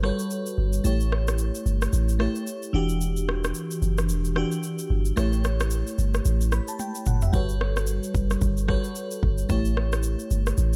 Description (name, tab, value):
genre	afrobeats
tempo	111 BPM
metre	4/4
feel	swing 58% on 16ths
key	A mixolydian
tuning	A4 = 440 Hz
part	crystalline FM electric piano	accompaniment	0.0-10.8 s	E3 to B5	-31 LUFS	equal	chorus
part	warm 808-style bass	bass	0.0-10.8 s	E1 to A1	-26 LUFS	equal	none
part	afro-pop drum kit	drums	0.0-10.8 s	kick drum, rim click, shaker, toms	-33 LUFS	equal	none
room	digital ambience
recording	none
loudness	-25 LUFS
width	mono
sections	0.0-10.8 A section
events	break 0.0-7.3; drum fill 6.8-7.3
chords	0.0 Gmaj9#11; 0.8 A7; 2.7 Em9; 5.2 A7